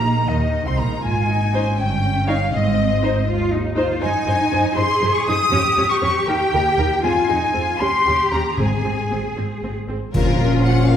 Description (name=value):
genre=classical, dramatic, fast romantic movement for symphony orchestra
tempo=80 BPM (dotted quarters)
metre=6/8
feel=straight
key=Ab major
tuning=A4 = 441 Hz
part: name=rich studio violin section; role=melody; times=0.0-11.0 s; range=Bb4 to Eb6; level=-29 LUFS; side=left 4 dB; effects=none
part: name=clear symphonic violin section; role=second line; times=0.0-11.0 s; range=F4 to Eb6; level=-27 LUFS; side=left 2 dB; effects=none
part: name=silver concert flute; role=second line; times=0.0-9.4 s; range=Eb5 to Eb6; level=-21 LUFS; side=left 1 dB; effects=none
part: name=rich symphonic viola section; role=accompaniment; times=0.0-11.0 s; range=Eb3 to Db5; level=-26 LUFS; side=equal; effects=none
part: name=clear chamber double bass section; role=bass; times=0.0-11.0 s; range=G1 to Gb2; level=-22 LUFS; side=right 2 dB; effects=none
part: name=rich symphonic cello section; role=bass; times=0.0-11.0 s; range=Bb2 to Ab4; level=-24 LUFS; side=equal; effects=none
part: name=timpani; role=percussion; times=2.5-3.2, 8.6-10.8 s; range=Ab2 to Bb2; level=-25 LUFS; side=equal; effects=none
part: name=warm French horn section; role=sustained chords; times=10.1-11.0 s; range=F3 to Db4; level=-21 LUFS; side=left 3 dB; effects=none
part: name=clash cymbals and concert bass drum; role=percussion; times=10.1-11.0 s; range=none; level=-22 LUFS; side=left 1 dB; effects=none
room=wet recital hall reverb, RT60 1.4 s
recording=heard from further back in the room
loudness=-16 LUFS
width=side -9 dB against mid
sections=0.0-10.2 A section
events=band accent 10.2-10.6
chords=0.0 Eb5/Bb; 1.0 Ab; 1.8 Eb7/G; 2.5 Ab; 4.0 Ab7/Gb; 5.5 Db; 6.3 Eb; 7.0 Fm; 7.8 Eb7; 8.6 Ab; 10.2 Bbm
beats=0.28 | 1.04 1.79 | 2.53 3.28 | 4.03 4.78 | 5.52 6.28 | 7.04 7.80 | 8.59 9.38 | 10.15 10.89